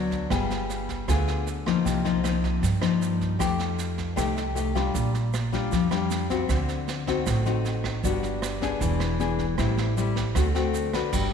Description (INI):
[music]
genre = bossa nova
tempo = 155 BPM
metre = 4/4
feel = straight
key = unclear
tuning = A4 = 440 Hz
[part]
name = nylon-string guitar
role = accompaniment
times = 0.0-11.3 s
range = G2 to B4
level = -26 LUFS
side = left 6 dB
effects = none
[part]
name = upright bass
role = bass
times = 0.0-11.3 s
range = E1 to G2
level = -28 LUFS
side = right 2 dB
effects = none
[part]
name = jazz brush drum kit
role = drums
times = 0.1-11.2 s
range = crash cymbal, kick drum, rim click, snare drum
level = -32 LUFS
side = right 6 dB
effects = none
[part]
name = egg shaker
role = percussion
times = 0.1-11.3 s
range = none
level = -43 LUFS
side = right 15 dB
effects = none
[sound]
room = moderate echo chamber reverb, RT60 1.8 s, small room ambience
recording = 1960s-style stereo with parts hard left and right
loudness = -23 LUFS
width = side -7 dB against mid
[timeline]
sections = 0.0-11.1 A section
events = none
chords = 0.3 G7b9; 1.9 Cm7; 3.4 F9; 4.9 Bb6; 6.5 D7b9; 8.0 Gmaj7; 8.8 E7; 9.6 Am7; 10.4 D7